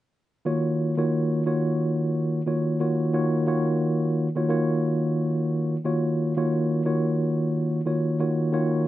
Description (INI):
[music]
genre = hip hop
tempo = 89 BPM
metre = 4/4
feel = swing 58% on 16ths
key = Eb minor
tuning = A4 = 440 Hz
[part]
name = mellow tine electric piano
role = solo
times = 0.5-8.9 s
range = Eb3 to Db5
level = -22 LUFS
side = equal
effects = medium stereo tremolo, cassette tape, high-pass filter, low-pass filter
[sound]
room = wet studio ambience, RT60 0.5 s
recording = nothing above 10.4 kHz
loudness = -22 LUFS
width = side -14 dB against mid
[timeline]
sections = 0.5-5.8 A section; 5.8-8.9 B section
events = none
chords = 0.5 Ebm9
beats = | 0.45 1.12 1.80 2.47 | 3.15 3.82 4.50 5.17 | 5.84 6.52 7.19 7.87 | 8.54